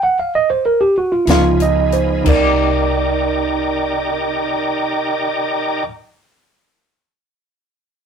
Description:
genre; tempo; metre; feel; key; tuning
slow blues; 60 BPM (dotted quarters); 12/8; straight; C minor; A4 = 439 Hz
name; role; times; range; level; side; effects
tine electric piano; accompaniment; 0.0-5.9 s; F3 to F#5; -16 LUFS; right 3 dB; none
semi-hollow electric guitar; accompaniment; 1.3-6.0 s; C3 to Ab4; -26 LUFS; left 4 dB; tremolo
tonewheel organ; sustained chords; 1.3-5.8 s; Eb4 to D5; -20 LUFS; equal; slow rotary speaker, chorus vibrato
vintage muted fingered electric bass; bass; 1.3-5.8 s; C2 to Db2; -21 LUFS; left 2 dB; none
compact cocktail drum kit; drums; 1.3-2.4 s; crash cymbal, hi-hat, kick drum, snare drum; -19 LUFS; left 2 dB; none
room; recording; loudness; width
moderate studio reverb, RT60 0.5 s; rough rehearsal-room recording, tube saturation; -14 LUFS; side -7 dB against mid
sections
0.0-2.3 A section; 2.3-6.3 B section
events
slowing down 0.0-2.3; tine electric piano solo 0.0-2.3; stop 0.0-1.3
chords
0.0 Cm7; 1.3 Db7; 2.3 Cm7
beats
0.33 1.28 | 2.26 3.27 4.27 5.27

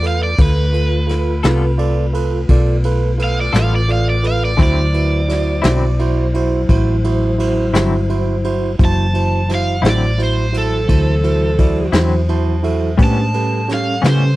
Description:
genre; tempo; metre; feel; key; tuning
slow blues; 57 BPM (dotted quarters); 12/8; straight; D mixolydian; A4 = 439 Hz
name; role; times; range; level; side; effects
cranked stack guitar; melody; 0.0-14.4 s; A4 to A5; -22 LUFS; right 1 dB; overdrive
barky tine electric piano; accompaniment; 0.0-14.3 s; C#4 to A5; -22 LUFS; right 5 dB; none
mellow tonewheel organ; sustained chords; 0.0-14.4 s; E3 to C5; -24 LUFS; left 2 dB; slow rotary speaker
hollow-body short-scale fingered electric bass; bass; 0.0-14.4 s; F#1 to C#3; -16 LUFS; equal; none
vintage brush drum kit; drums; 0.0-14.2 s; kick drum, ride cymbal, snare drum; -19 LUFS; equal; none
semi-hollow electric guitar; accompaniment; 1.4-14.2 s; A2 to A4; -21 LUFS; left 6 dB; tremolo
room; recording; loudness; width
little or no reverb; dry, close 1970s-style studio recording; -13 LUFS; side -17 dB against mid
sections
0.0-14.4 A section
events
tine electric piano fill 11.9-13.0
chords
0.0 G9 (rootless); 4.6 D9; 13.0 A9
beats
| 0.38 1.44 2.49 3.54 | 4.59 5.64 6.69 7.74 | 8.79 9.84 10.89 11.94 | 12.99 14.03

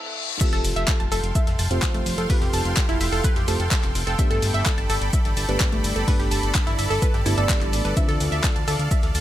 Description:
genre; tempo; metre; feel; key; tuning
progressive house; 127 BPM; 4/4; straight; unclear; A4 = 440 Hz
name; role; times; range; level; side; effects
deep mellow chord stab; stabs; 0.0-9.2 s; G2 to E5; -30 LUFS; right 2 dB; chorus, sidechain pumping, digital delay
supersaw pad; sustained chords; 0.4-9.2 s; A4 to C6; -30 LUFS; right 1 dB; sidechain pumping
wide unison pluck; arpeggios; 0.4-9.2 s; A3 to A5; -28 LUFS; right 1 dB; sidechain pumping, digital delay
breakbeat sampler-style drum kit; drums; 0.4-9.2 s; hi-hat, shaker, snare drum; -36 LUFS; right 1 dB; none
deep house drum kit; drums; 0.4-9.2 s; crash cymbal, handclaps, hi-hat; -28 LUFS; left 2 dB; high-pass filter on hats, high-pass filter on cymbals, high-pass filter on snare, high-pass filter on room
electronic kick drum; drums; 0.4-9.0 s; none; -22 LUFS; equal; high-pass filter on kick
fat analog bass; bass; 0.5-9.2 s; F1 to D2; -25 LUFS; equal; sidechain pumping
room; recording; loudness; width
little or no reverb; high-pass filter; -19 LUFS; side -13 dB against mid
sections
0.4-9.2 A section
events
break 0.0-0.4; drop 0.4-9.2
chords
0.4 Fadd9; 4.2 Gadd9; 8.0 Dm7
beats
| 0.41 0.88 1.35 1.83 | 2.30 2.77 3.24 3.71 | 4.19 4.66 5.13 5.61 | 6.08 6.55 7.02 7.50 | 7.97 8.44 8.91

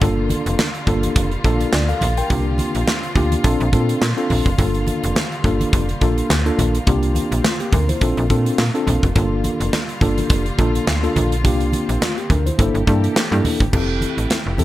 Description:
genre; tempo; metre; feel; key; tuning
early-eighties boogie funk; 105 BPM; 4/4; swing 56% on 16ths; G dorian; A4 = 442 Hz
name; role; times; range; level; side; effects
mellow tine electric piano; accompaniment; 0.0-14.6 s; A3 to G5; -21 LUFS; left 1 dB; medium stereo tremolo
warm studio string section; sustained chords; 0.0-14.6 s; D3 to A4; -28 LUFS; equal; none
slap-like FM bass; bass; 0.0-14.6 s; F1 to Bb2; -20 LUFS; equal; none
modern studio drum kit; drums; 0.0-14.6 s; crash cymbal, handclaps, hi-hat, kick drum, snare drum; -20 LUFS; equal; none
congas; percussion; 0.0-14.6 s; none; -27 LUFS; right 1 dB; none
room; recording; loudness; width
little or no reverb; none; -16 LUFS; side -15 dB against mid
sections
0.0-13.7 A section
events
none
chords
0.0 Gm7; 2.3 C9sus4; 3.4 Bbmaj7; 4.6 Gm7; 6.9 C9sus4; 8.0 Bbmaj7; 9.2 Gm7; 11.4 C9sus4; 12.6 Gm69; 13.7 Fmaj9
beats
| 0.02 0.59 1.16 1.73 | 2.30 2.87 3.44 4.02 | 4.59 5.16 5.73 6.30 | 6.87 7.45 8.02 8.59 | 9.16 9.73 10.30 10.87 | 11.45 12.02 12.59 13.16 | 13.73 14.30

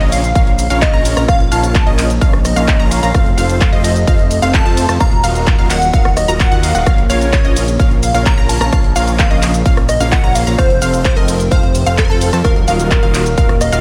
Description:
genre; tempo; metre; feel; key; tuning
EDM, festival progressive house; 129 BPM; 4/4; straight; Bb harmonic minor; A4 = 440 Hz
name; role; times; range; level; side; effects
plucky unison lead; melody; 0.0-13.8 s; A4 to Bb5; -22 LUFS; equal; analog chorus, dub echo
lush unison pad; sustained chords; 0.0-13.8 s; C3 to F5; -26 LUFS; equal; chorus, sidechain pumping
unison pluck; arpeggios; 0.0-13.8 s; Eb5 to Bb5; -25 LUFS; equal; sidechain pumping, dub echo
supersaw chords; riff; 0.0-13.8 s; C4 to Bb5; -24 LUFS; equal; phaser, sidechain pumping
fat analog bass; bass; 0.0-13.8 s; Eb1 to F2; -20 LUFS; equal; sidechain pumping
big-room dance drum kit; drums; 0.0-13.8 s; handclaps, hi-hat, ride cymbal, rim click, shaker; -24 LUFS; equal; studio reverb
electronic kick drum; drums; 0.4-13.5 s; none; -15 LUFS; equal; studio reverb
room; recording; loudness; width
digital ambience; none; -13 LUFS; mono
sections
0.0-13.8 A section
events
none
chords
0.0 Bbm; 3.1 F; 5.0 Ebmadd9; 6.9 Bbm; 10.6 F; 12.4 Ebmadd9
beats
0.35 0.82 | 1.28 1.75 2.21 2.68 | 3.15 3.61 4.08 4.54 | 5.00 5.47 5.93 6.40 | 6.87 7.33 7.80 8.26 | 8.73 9.19 9.66 10.12 | 10.59 11.05 11.52 11.98 | 12.45 12.91 13.38

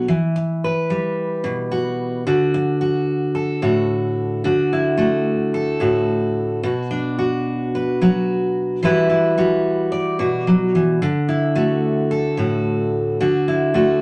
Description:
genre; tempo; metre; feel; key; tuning
highlife; 110 BPM; 4/4; swing 53% on 16ths; D major; A4 = 440 Hz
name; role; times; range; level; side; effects
picked steel-string acoustic guitar; solo; 0.0-14.0 s; A2 to D5; -20 LUFS; equal; none
room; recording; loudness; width
wet studio reverb, RT60 0.5 s; none; -20 LUFS; mono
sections
0.0-2.3 A section; 2.3-14.0 B section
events
none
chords
0.1 Emadd9; 2.3 Dadd9; 6.6 Bm; 8.8 Emadd9; 11.0 Dadd9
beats
| 0.09 0.63 1.18 1.73 | 2.27 2.82 3.37 3.91 | 4.46 5.00 5.55 6.10 | 6.64 7.19 7.74 8.28 | 8.83 9.38 9.92 10.47 | 11.01 11.56 12.11 12.65 | 13.20 13.75

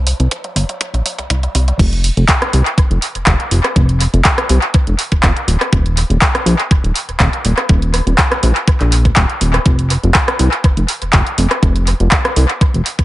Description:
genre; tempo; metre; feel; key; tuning
nu-disco, nu disco; 122 BPM; 4/4; straight; unclear; A4 = 440 Hz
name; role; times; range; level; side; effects
chorused synth bass; bass; 0.0-13.0 s; Eb1 to C2; -13 LUFS; equal; none
house drum kit; drums; 0.1-13.0 s; crash cymbal, handclaps, hi-hat, rim click, toms; -17 LUFS; equal; overdrive, high-pass filter on hats, high-pass filter on toms, high-pass filter on cymbals, high-pass filter on snare, high-pass filter on room, tape echo
electronic kick drum; drums; 0.3-13.0 s; none; -13 LUFS; equal; high-pass filter on kick, high-pass filter on room
room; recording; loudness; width
light reverb; echo-heavy mix, nothing above 10.9 kHz; -11 LUFS; side -16 dB against mid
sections
0.0-1.8 A section; 1.8-13.0 B section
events
build-up 0.0-1.8; drum fill 0.0-1.8; drop 1.8-13.0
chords
none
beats
0.32 0.81 1.30 | 1.79 2.28 2.78 3.27 | 3.76 4.25 4.74 5.24 | 5.73 6.22 6.71 7.20 | 7.69 8.19 8.68 9.17 | 9.66 10.15 10.64 11.14 | 11.63 12.12 12.61

